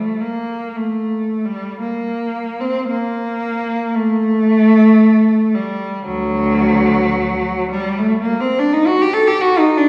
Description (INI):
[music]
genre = classical, free, expressive piece for unaccompanied cello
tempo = 54-59 BPM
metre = 4/4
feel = rubato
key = unclear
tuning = A4 = 439 Hz
[part]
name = rich cello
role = solo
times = 0.0-9.9 s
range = D2 to A4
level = -16 LUFS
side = equal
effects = none
[sound]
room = wet concert hall reverb, RT60 2.0 s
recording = heard from further back in the room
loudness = -16 LUFS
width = mono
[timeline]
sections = 0.0-9.9 A section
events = none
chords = none